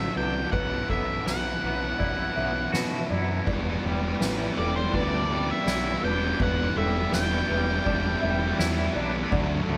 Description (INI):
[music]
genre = post-rock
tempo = 82 BPM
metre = 4/4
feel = straight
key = E minor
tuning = A4 = 440 Hz
[part]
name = octave-fuzz lead guitar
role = melody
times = 0.0-8.6 s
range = C5 to G5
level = -32 LUFS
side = equal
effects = distortion
[part]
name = dark symphonic string section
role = sustained chords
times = 0.0-9.8 s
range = F#3 to E5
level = -42 LUFS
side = equal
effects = none
[part]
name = felt-muted upright piano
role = arpeggios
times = 0.0-9.8 s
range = A4 to E5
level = -38 LUFS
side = equal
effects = none
[part]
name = twangy electric guitar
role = arpeggios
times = 0.0-9.8 s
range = E2 to F#4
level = -36 LUFS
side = equal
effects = tremolo
[part]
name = sludgy distorted guitar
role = riff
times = 0.0-9.8 s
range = B2 to B3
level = -34 LUFS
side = equal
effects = overdrive
[part]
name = growling picked electric bass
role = bass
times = 0.0-9.8 s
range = E1 to B2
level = -33 LUFS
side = equal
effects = overdrive
[part]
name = soft-mallet drum kit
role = drums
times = 0.2-9.5 s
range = crash cymbal, kick drum, ride cymbal, snare drum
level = -34 LUFS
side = equal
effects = none
[part]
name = sludgy distorted guitar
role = riff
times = 3.5-9.8 s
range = D3 to A3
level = -36 LUFS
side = equal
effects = overdrive
[sound]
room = moderate stone room reverb, RT60 1.1 s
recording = band playing live in one room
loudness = -26 LUFS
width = mono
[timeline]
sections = 0.0-9.8 A section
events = build-up 0.0-9.8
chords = 0.0 D; 0.5 Bsus4; 3.5 Em7